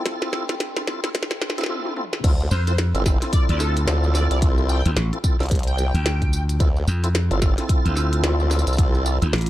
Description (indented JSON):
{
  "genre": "glitch hop",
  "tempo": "110 BPM",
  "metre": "4/4",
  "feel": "swing 60% on 16ths",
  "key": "D minor",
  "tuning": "A4 = 440 Hz",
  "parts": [
    { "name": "tonewheel organ", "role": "stabs", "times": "0.0-9.3 s", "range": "C4 to A4", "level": "-28 LUFS", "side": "equal", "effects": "chorus vibrato, slow rotary speaker, sidechain pumping, dub echo" },
    { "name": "warbly tape-like pad", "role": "texture", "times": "0.0-9.5 s", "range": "D4 to C6", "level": "-36 LUFS", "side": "right 2 dB", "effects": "none" },
    { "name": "electronic kick drum", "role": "drums", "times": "0.1-8.9 s", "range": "none", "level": "-20 LUFS", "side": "equal", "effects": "high-pass filter on kick, small room ambience" },
    { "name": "glitchy drum kit", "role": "drums", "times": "0.1-9.5 s", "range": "crash cymbal, hi-hat, snare drum, tambourine, toms", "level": "-27 LUFS", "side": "equal", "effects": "small room ambience" },
    { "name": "formant-sweep wobble bass", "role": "bass", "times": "2.2-9.2 s", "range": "G1 to D2", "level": "-21 LUFS", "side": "equal", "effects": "chorus, tube saturation" },
    { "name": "sync lead", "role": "melody", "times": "2.5-6.4 s", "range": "A4 to G5", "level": "-33 LUFS", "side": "equal", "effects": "ensemble chorus, dub echo" },
    { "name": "slap bass", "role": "bass", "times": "2.5-9.5 s", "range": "A1 to F2", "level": "-20 LUFS", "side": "equal", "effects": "none" }
  ],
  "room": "little or no reverb",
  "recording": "dark, warm production, high-pass filter",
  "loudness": "-18 LUFS",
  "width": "side -14 dB against mid",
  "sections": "0.0-2.2 A section; 2.2-9.5 B section",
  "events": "build-up 0.0-2.2; drum fill 0.0-1.7, 1.7-2.2; break 1.7-2.2; drop 2.2-9.5",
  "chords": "0.0 Dm7",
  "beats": "| 0.06 0.60 1.15 1.70 | 2.24 2.79 3.33 3.88 | 4.42 4.97 5.51 6.06 | 6.60 7.15 7.70 8.24 | 8.79 9.33"
}